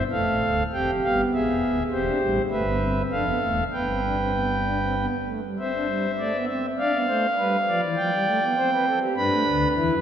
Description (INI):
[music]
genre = classical, baroque-style 4-part fugue for pipe organ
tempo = 100 BPM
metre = 3/4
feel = straight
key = C major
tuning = A4 = 439 Hz
[part]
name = pipe organ, principal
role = solo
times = 0.0-10.0 s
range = D1 to B5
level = -21 LUFS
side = equal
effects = none
[sound]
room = wet church reverb, RT60 3.8 s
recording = nothing above 10.8 kHz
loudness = -21 LUFS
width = side -9 dB against mid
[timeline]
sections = 0.0-5.6 A section; 5.6-10.0 B section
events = none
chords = 0.1 Dm; 1.3 E; 1.9 C/E; 3.1 Dm/F; 3.7 G; 5.6 C; 6.8 Dm; 7.4 G7; 8.6 C5; 9.2 G